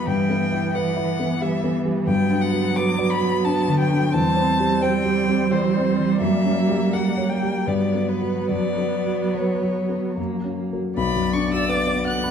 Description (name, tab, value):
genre	classical, slow romantic movement for piano quartet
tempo	69-92 BPM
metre	3/4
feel	rubato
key	B minor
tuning	A4 = 440 Hz
part	rich violin	melody	0.0-12.3 s	B4 to F#6	-26 LUFS	left 4 dB	none
part	warm cello	second line	0.0-12.3 s	E3 to B3	-24 LUFS	right 6 dB	none
part	dark grand piano	accompaniment	0.0-12.3 s	B1 to B5	-23 LUFS	left 2 dB	none
part	warm viola	accompaniment	0.0-12.3 s	A#3 to D5	-29 LUFS	right 3 dB	none
room	wet stone room reverb, RT60 1.2 s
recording	dark, warm production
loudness	-19 LUFS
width	side -7 dB against mid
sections	0.0-11.0 A section; 11.0-12.3 B section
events	none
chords	0.1 Em/G; 2.1 Gmaj7; 4.2 C/E; 6.2 F#7b9; 7.7 Gmaj7; 8.5 F#sus4; 10.2 F#; 11.0 Bm